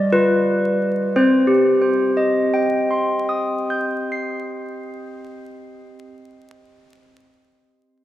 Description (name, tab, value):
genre	classical, tune for handbells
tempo	59 BPM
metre	4/4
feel	straight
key	C minor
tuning	A4 = 440 Hz
part	handbells	solo	0.0-6.7 s	G3 to C7	-17 LUFS	equal	none
room	wet cathedral reverb, RT60 4.5 s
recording	dark, warm production, vinyl crackle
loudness	-16 LUFS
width	side -14 dB against mid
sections	0.0-1.2 A section; 1.2-5.3 B section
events	slowing down 0.0-1.2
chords	0.0 G7; 1.2 Cm